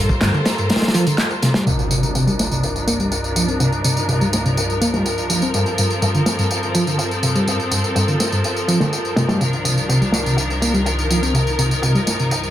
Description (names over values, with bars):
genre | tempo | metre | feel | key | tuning
breakbeat, breaks | 124 BPM | 4/4 | straight | C minor | A4 = 440 Hz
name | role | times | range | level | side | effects
clear studio string section | sustained chords | 0.0-12.5 s | C2 to C5 | -21 LUFS | equal | sidechain pumping, low-pass filter
reed electric piano | riff | 0.0-12.3 s | G2 to C4 | -19 LUFS | equal | fast tremolo, low-pass filter
crunchy breakbeat drum kit | drums | 0.1-12.4 s | hi-hat, kick drum, snare drum | -23 LUFS | equal | low-pass filter on kick, low-pass filter on hats, low-pass filter on snare, low-pass filter on room
electronic tambourine and handclaps | drums | 0.1-12.5 s | none | -24 LUFS | equal | none
impact | sound effects | 1.7-3.6 s | none | -26 LUFS | equal | none
room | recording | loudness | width
light reverb | none | -16 LUFS | side -12 dB against mid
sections
0.0-1.7 A section; 1.7-12.5 B section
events
kick drops out 0.7-1.7; impact 1.7-3.6; filter sweep on reed electric piano 1.7-12.5; filter sweep on string section 1.7-12.5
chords
0.0 Gm11; 1.7 Cm11; 5.5 Gm11; 9.4 Cm11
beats
0.22 0.70 1.18 | 1.67 2.15 2.63 3.12 | 3.60 4.09 4.57 5.05 | 5.54 6.02 6.51 6.99 | 7.47 7.96 8.44 8.93 | 9.41 9.89 10.38 10.86 | 11.35 11.83 12.31